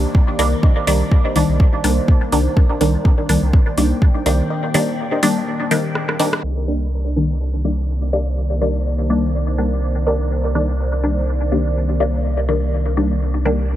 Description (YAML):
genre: dub techno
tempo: 124 BPM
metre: 4/4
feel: swing 56% on 16ths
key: C minor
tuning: A4 = 441 Hz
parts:
  - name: deep dark ambient pad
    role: sustained chords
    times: 0.0-13.8 s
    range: Eb3 to G5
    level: -25 LUFS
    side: equal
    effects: chorus, built-in reverb, sidechain pumping
  - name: filtered dub chord stab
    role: stabs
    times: 0.0-13.8 s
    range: Eb3 to D4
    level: -20 LUFS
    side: left 1 dB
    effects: phaser, sidechain pumping, dub echo
  - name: pure sine sub bass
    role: bass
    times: 0.0-13.8 s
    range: C2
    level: -19 LUFS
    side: equal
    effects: sidechain pumping
  - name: electronic kick drum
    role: drums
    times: 0.1-4.1 s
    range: none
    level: -13 LUFS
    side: equal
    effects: small room ambience
  - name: deep house drum kit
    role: drums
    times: 0.4-6.4 s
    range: hi-hat, rim click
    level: -26 LUFS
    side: equal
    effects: low-pass filter on hats, small room ambience, low-pass filter on snare
  - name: filtered dub chord stab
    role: riff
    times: 0.6-6.3 s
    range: D4 to Eb5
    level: -29 LUFS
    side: left 3 dB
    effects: phaser, vintage 12-bit sampler grit, sidechain pumping, dub echo
room: light reverb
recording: low-pass filter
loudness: -15 LUFS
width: side -12 dB against mid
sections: 0.0-6.4 A section; 6.4-13.8 B section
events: break 4.5-6.4; drum fill 6.0-6.4; band accent 6.3; filter sweep 6.4-13.8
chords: 0.0 Cm9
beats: 0.15 | 0.63 1.11 1.60 2.08 | 2.57 3.05 3.53 4.02 | 4.50 4.99 5.47 5.95 | 6.44 6.92 7.41 7.89 | 8.37 8.86 9.34 9.82 | 10.31 10.79 11.28 11.76 | 12.24 12.73 13.21 13.70